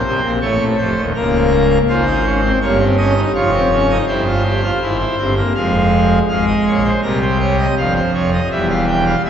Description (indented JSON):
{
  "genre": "classical, baroque-style 3-part fugue for pipe organ",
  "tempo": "82 BPM",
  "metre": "3/4",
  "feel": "straight",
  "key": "F minor from 6.3 s",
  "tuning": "A4 = 440 Hz",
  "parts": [
    { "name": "pipe organ, full organ", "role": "solo", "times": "0.0-9.3 s", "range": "C1 to G5", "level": "-13 LUFS", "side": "equal", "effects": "none" }
  ],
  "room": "wet church reverb, RT60 3.2 s",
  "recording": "heard from further back in the room, nothing above 8.0 kHz",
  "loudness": "-13 LUFS",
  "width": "side -8 dB against mid",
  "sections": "0.0-6.3 A section; 6.3-9.3 B section",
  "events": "none",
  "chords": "0.0 F; 1.2 Bbm/Db; 1.9 Fm/Ab; 3.3 Dbmaj9/F; 4.1 C/G; 5.6 Fm; 6.3 Fm/Ab; 7.8 Eb13; 8.5 C/E"
}